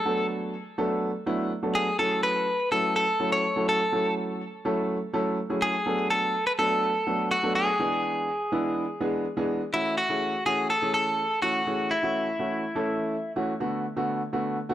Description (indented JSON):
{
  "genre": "pop",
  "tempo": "124 BPM",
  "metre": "4/4",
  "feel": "straight",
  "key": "F# minor",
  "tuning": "A4 = 440 Hz",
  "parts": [
    { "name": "direct-recorded clean electric guitar", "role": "melody", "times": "0.0-13.3 s", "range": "E4 to C#5", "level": "-25 LUFS", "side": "equal", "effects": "spring reverb, tape echo" },
    { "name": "warm baby grand piano", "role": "accompaniment", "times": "0.1-14.7 s", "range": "D3 to A4", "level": "-28 LUFS", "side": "right 1 dB", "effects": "none" }
  ],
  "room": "light reverb",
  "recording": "dry, gritty hardware recording",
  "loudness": "-24 LUFS",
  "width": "side -12 dB against mid",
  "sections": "0.0-9.7 A section; 9.7-14.7 B section",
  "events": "none",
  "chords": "0.0 Bm7; 2.0 F#m7; 5.9 Bm7; 7.8 E7; 9.7 F#m7; 13.6 Bm7"
}